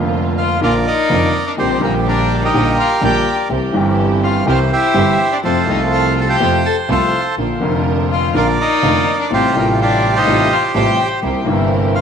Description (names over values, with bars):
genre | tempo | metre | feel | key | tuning
tango | 124 BPM | 4/4 | rubato | Bb major | A4 = 440 Hz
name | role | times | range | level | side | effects
warm concert grand piano | accompaniment | 0.0-12.0 s | F1 to G4 | -18 LUFS | left 1 dB | none
warm symphonic string section | stabs | 0.0-12.0 s | Bb3 to Bb4 | -24 LUFS | right 10 dB | tape echo
rich double bass | bass | 0.0-12.0 s | F1 to F2 | -20 LUFS | right 1 dB | none
bandoneon | melody | 0.4-12.0 s | F4 to A5 | -17 LUFS | right 3 dB | tape echo
rich violin | second line | 0.4-12.0 s | Bb3 to A4 | -21 LUFS | left 11 dB | tape echo
room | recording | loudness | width
moderate echo chamber reverb, RT60 1.9 s, small room ambience | 1960s-style stereo with parts hard left and right | -13 LUFS | side -7 dB against mid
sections
0.0-12.0 A section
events
none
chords
0.0 Bb; 1.6 Gm/Bb; 3.5 C; 5.4 F; 7.4 Bb; 9.3 Fadd9/A; 11.2 C7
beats
0.14 0.62 1.11 | 1.59 2.07 2.55 3.03 | 3.51 3.99 4.47 4.95 | 5.44 5.92 6.40 6.89 | 7.37 7.86 8.34 8.82 | 9.31 9.79 10.27 10.75 | 11.23 11.71